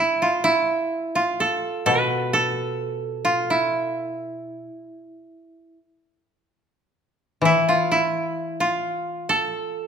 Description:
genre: japanese traditional.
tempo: 65 BPM.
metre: 4/4.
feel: rubato.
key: unclear.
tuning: A4 = 440 Hz.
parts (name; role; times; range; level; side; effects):
koto; melody; 0.0-9.9 s; E4 to B4; -21 LUFS; right 2 dB; none.
koto; accompaniment; 1.9-9.9 s; B2 to E3; -25 LUFS; left 4 dB; none.
room: wet recital hall reverb, RT60 1.4 s.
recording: minimal, uncompressed stereo recording.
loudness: -20 LUFS.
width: side -7 dB against mid.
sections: 0.0-9.9 A section.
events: none.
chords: none.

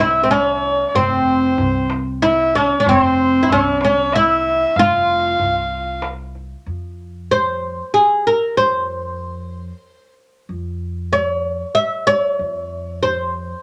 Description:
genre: Persian modal ensemble.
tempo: 94 BPM.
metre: 3/4.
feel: straight.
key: F avaz esfahan.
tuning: A4 = 438 Hz.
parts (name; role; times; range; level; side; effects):
oud; melody; 0.0-13.6 s; C4 to E5; -19 LUFS; equal; none.
rich kamancheh; second line; 0.0-6.0 s; C5 to F5; -21 LUFS; equal; none.
upright bass; bass; 0.0-13.5 s; F1 to F2; -30 LUFS; equal; none.
tombak; percussion; 0.0-6.4 s; none; -29 LUFS; equal; none.
room: moderate studio reverb, RT60 0.6 s.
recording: none.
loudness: -17 LUFS.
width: mono.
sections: 0.0-6.7 A section; 6.7-13.6 B section.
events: none.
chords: none.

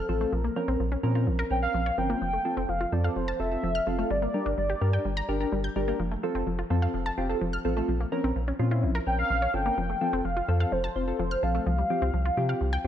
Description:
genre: pop.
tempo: 127 BPM.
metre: 4/4.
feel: straight.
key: F major.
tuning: A4 = 440 Hz.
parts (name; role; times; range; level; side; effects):
warm velvety synth lead; melody; 0.0-5.2, 9.1-12.9 s; A4 to G5; -30 LUFS; equal; chorus, tape echo.
wide unison pluck; arpeggios; 0.0-12.8 s; F3 to G6; -33 LUFS; left 1 dB; tape echo.
soft electric-piano-like synth keys; accompaniment; 0.1-12.9 s; C4 to C5; -31 LUFS; equal; chorus, phaser.
round analog bass; bass; 0.1-12.9 s; F1 to C3; -29 LUFS; equal; none.
room: light reverb, digital ambience.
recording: none.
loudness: -25 LUFS.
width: side -10 dB against mid.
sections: 0.0-12.9 A section.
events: none.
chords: 0.3 Bbmadd9; 2.2 F; 4.1 Gm; 6.0 F; 7.9 Bbmadd9; 9.8 F; 11.7 Csus4.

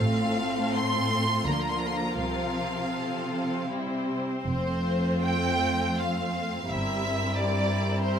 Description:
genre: classical, slow romantic movement for string orchestra.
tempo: 71-93 BPM.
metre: 3/4.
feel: rubato.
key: F major.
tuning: A4 = 442 Hz.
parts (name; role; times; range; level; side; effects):
rich studio violin section; melody; 0.0-8.2 s; C5 to C6; -30 LUFS; equal; none.
rich studio violin section; second line; 0.0-8.2 s; E4 to C5; -34 LUFS; left 3 dB; none.
warm studio viola section; accompaniment; 0.0-8.2 s; F3 to C4; -30 LUFS; right 1 dB; none.
dark studio double bass section; bass; 0.0-7.3 s; F1 to D2; -33 LUFS; right 1 dB; none.
warm studio cello section; bass; 0.0-8.2 s; F2 to D3; -30 LUFS; equal; none.
room: light reverb.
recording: close, detailed microphones.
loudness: -25 LUFS.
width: side -8 dB against mid.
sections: 0.0-8.2 A section.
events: none.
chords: 0.0 F/A; 1.5 Bb/D; 2.2 F/C; 3.7 C; 4.4 F; 6.7 C7/G.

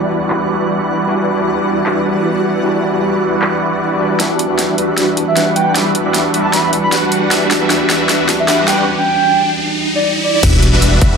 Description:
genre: future bass.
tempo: 154 BPM.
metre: 4/4.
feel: swing 54% on 16ths, half-time.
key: E minor.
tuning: A4 = 440 Hz.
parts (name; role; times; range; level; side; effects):
tine electric piano; accompaniment; 0.0-10.5 s; E3 to G4; -19 LUFS; left 1 dB; overdrive, fast stereo tremolo, sidechain pumping, digital delay.
shimmering ambient pad; sustained chords; 0.0-8.8 s; E3 to F#5; -24 LUFS; right 1 dB; chorus, built-in reverb, sidechain pumping.
supersaw chords; riff; 0.0-11.2 s; G3 to F#5; -16 LUFS; right 1 dB; phaser, sidechain pumping, low-pass filter.
big-room dance drum kit; drums; 0.3-11.1 s; crash cymbal, handclaps, hi-hat, snare drum; -18 LUFS; equal; overdrive, high-pass filter on hats, low-pass filter on hats, high-pass filter on cymbals, low-pass filter on cymbals, high-pass filter on snare, low-pass filter on snare.
riser and sub drop; sound effects; 6.7-11.2 s; none; -19 LUFS; equal; none.
breathy flute-like synth lead; melody; 5.3-10.4 s; D5 to B5; -17 LUFS; right 2 dB; lush chorus, sidechain pumping, dub echo.
fat analog bass; bass; 10.4-11.2 s; E1; -14 LUFS; equal; sidechain pumping.
electronic kick drum; drums; 10.4-11.1 s; none; -13 LUFS; equal; overdrive.
room: moderate digital room reverb, RT60 1.3 s, digital ambience.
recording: none.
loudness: -12 LUFS.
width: side -6 dB against mid.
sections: 0.0-4.2 A section; 4.2-10.4 B section.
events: build-up 4.2-10.4; drum fill 4.2-8.9; filter sweep on supersaw synth 4.2-10.4; filter sweep on soft synth lead 4.2-10.4; riser 6.7-10.4; impact 10.4-11.2.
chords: 0.0 Em9.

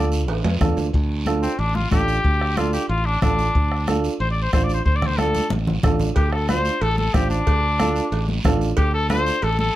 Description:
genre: latin, cumbia.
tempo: 184 BPM.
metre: 4/4.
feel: straight.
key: D minor.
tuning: A4 = 440 Hz.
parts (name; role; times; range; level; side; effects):
warm trumpet; melody; 0.0-9.8 s; C4 to D5; -23 LUFS; left 2 dB; none.
dark upright piano; accompaniment; 0.0-9.3 s; D4 to C5; -25 LUFS; right 4 dB; none.
modern bright fingered electric bass; bass; 0.0-9.7 s; A1 to F2; -23 LUFS; equal; none.
guiro; percussion; 0.1-9.8 s; none; -36 LUFS; right 4 dB; none.
cowbell and timbales; percussion; 0.3-0.8, 6.2-9.6 s; none; -29 LUFS; right 4 dB; none.
bombo; percussion; 0.6-9.3 s; none; -22 LUFS; equal; none.
congas; percussion; 0.6-9.8 s; none; -26 LUFS; left 1 dB; none.
room: light reverb.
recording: none.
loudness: -18 LUFS.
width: side -14 dB against mid.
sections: 0.9-9.8 A section.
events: drum fill 0.3-0.9, 5.3-6.2; trumpet solo 0.9-9.8.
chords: 0.0 Dm.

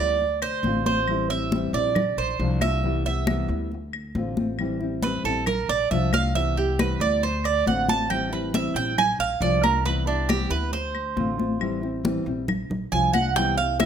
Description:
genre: latin, Cuban son and guajira.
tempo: 137 BPM.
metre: 4/4.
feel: straight.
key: unclear.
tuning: A4 = 440 Hz.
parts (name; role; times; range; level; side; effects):
nylon-string guitar; accompaniment; 0.0-13.9 s; C3 to F4; -29 LUFS; left 3 dB; none.
Cuban tres; arpeggios; 0.0-13.9 s; D4 to A5; -24 LUFS; right 6 dB; none.
upright bass; bass; 0.0-13.9 s; A1 to D2; -28 LUFS; equal; none.
congas; percussion; 0.2-13.9 s; none; -28 LUFS; left 2 dB; none.
claves; percussion; 0.4-13.9 s; none; -35 LUFS; left 8 dB; none.
bongos; percussion; 13.4-13.9 s; none; -30 LUFS; left 14 dB; none.
room: light reverb.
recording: close, detailed microphones.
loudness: -22 LUFS.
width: side -8 dB against mid.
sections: 0.0-13.9 A section.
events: Cuban tres solo 0.0-13.9.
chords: 0.2 Dm7; 1.1 Am7; 2.0 Bb7; 2.8 Cmaj7; 3.7 Dm7; 4.6 Am7; 5.5 Bb7; 6.3 Cmaj7; 7.2 Dm7; 8.1 Am7; 9.0 Bb7; 9.9 Cmaj7; 10.7 Dm7; 11.6 Am7; 12.5 Bb7.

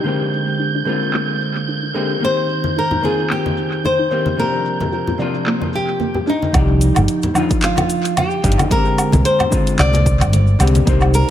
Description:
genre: sunset chillout.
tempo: 111 BPM.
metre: 4/4.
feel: swing 56% on 16ths.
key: unclear.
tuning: A4 = 441 Hz.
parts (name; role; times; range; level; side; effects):
hollow-body jazz guitar; accompaniment; 0.0-11.3 s; C3 to D5; -20 LUFS; equal; auto-pan, tape echo.
wind-like tuned noise texture; texture; 0.0-6.6 s; G6; -27 LUFS; right 6 dB; built-in reverb.
soft round pluck; arpeggios; 0.1-6.4 s; Bb3 to D5; -26 LUFS; equal; wide subtle chorus, tape echo.
smooth R&B drum kit; drums; 0.1-11.3 s; handclaps, hi-hat, shaker, woodblock; -23 LUFS; right 1 dB; low-pass filter on hats, low-pass filter on perc, low-pass filter on snare, low-pass filter on toms, tape echo.
flamenco guitar; melody; 2.2-11.3 s; Eb4 to D5; -20 LUFS; left 1 dB; analog delay.
congas; percussion; 2.6-10.8 s; none; -24 LUFS; left 2 dB; tape echo.
woody fretless electric bass; bass; 6.5-11.2 s; G1 to C2; -14 LUFS; equal; none.
electronic kick drum; drums; 6.5-11.0 s; none; -19 LUFS; equal; overdrive.
room: moderate echo chamber reverb, RT60 2.3 s.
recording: echo-heavy mix.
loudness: -14 LUFS.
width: side -11 dB against mid.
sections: 0.0-6.5 A section; 6.5-11.3 B section.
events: filter sweep on synth pluck 0.0-6.5.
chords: 0.1 Bb13; 2.2 Cm7; 4.4 Gm7/C; 6.5 Ebmaj9; 8.7 Bb13/C.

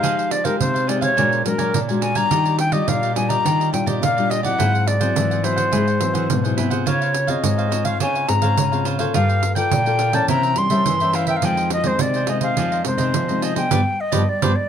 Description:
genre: samba and choro.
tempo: 105 BPM.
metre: 4/4.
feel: straight.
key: unclear.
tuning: A4 = 438 Hz.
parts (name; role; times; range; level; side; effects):
reedy concert flute; melody; 0.0-14.7 s; Bb4 to C6; -21 LUFS; left 1 dB; analog delay.
cavaquinho; accompaniment; 0.0-14.5 s; D4 to Ab5; -28 LUFS; right 5 dB; none.
nylon-string guitar; accompaniment; 0.0-14.5 s; F2 to A4; -25 LUFS; left 6 dB; none.
nylon-string guitar; bass; 0.0-14.5 s; G2 to Ab3; -23 LUFS; equal; none.
pandeiro; percussion; 0.0-14.6 s; none; -25 LUFS; right 8 dB; none.
room: moderate small room reverb, RT60 0.5 s.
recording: none.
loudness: -17 LUFS.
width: side -8 dB against mid.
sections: 0.0-14.7 A section.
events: band accent 13.7-14.7.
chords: 0.0 Fm9; 1.2 Bb7b13; 2.3 Ebmaj9; 4.6 Ab7b13; 6.9 Dbmaj7; 9.2 Gm9; 10.3 C7b9; 11.4 Fm7; 13.7 G7.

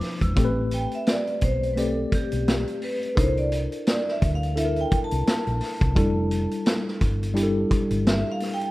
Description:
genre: lush 1970s-style soul.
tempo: 86 BPM.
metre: 4/4.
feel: swing 58% on 16ths.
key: A minor.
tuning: A4 = 444 Hz.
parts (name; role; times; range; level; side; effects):
mellow tine electric piano; accompaniment; 0.0-8.7 s; F3 to D5; -27 LUFS; left 1 dB; medium stereo tremolo.
vintage drum kit; drums; 0.0-8.7 s; hi-hat, kick drum, snare drum; -25 LUFS; equal; none.
worn celesta; texture; 0.0-0.6 s; D6 to E6; -39 LUFS; right 1 dB; none.
hollow-body short-scale fingered electric bass; bass; 0.2-8.2 s; E1 to D2; -26 LUFS; equal; none.
vibraphone with hard mallets; melody; 0.7-8.7 s; G4 to A5; -29 LUFS; right 1 dB; none.
room: light reverb, studio reverb.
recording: rough home demo mix.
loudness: -21 LUFS.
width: side -18 dB against mid.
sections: 0.0-8.7 A section.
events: vibraphone solo 0.0-8.7.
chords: 0.4 Am9; 3.2 C13; 6.0 Fmaj13.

